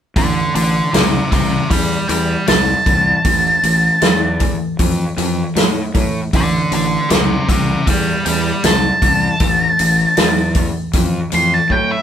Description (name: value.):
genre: blues rock power trio and southern rock.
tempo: 78 BPM.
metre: 4/4.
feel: straight.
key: A minor.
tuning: A4 = 442 Hz.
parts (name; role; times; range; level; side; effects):
octave-fuzz lead guitar; melody; 0.2-12.0 s; A4 to C6; -16 LUFS; equal; distortion.
crunchy overdriven guitar; riff; 0.2-12.0 s; A2 to F#3; -21 LUFS; equal; none.
fuzz fingered electric bass; bass; 0.2-11.9 s; A1 to A2; -20 LUFS; equal; overdrive.
vintage drum kit; drums; 0.2-11.9 s; hi-hat, kick drum, snare drum; -18 LUFS; equal; none.
room: light reverb.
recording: band playing live in one room.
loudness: -13 LUFS.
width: side -9 dB against mid.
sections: 0.2-12.0 A section.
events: drum fill 11.7-12.0.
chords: 0.2 Am.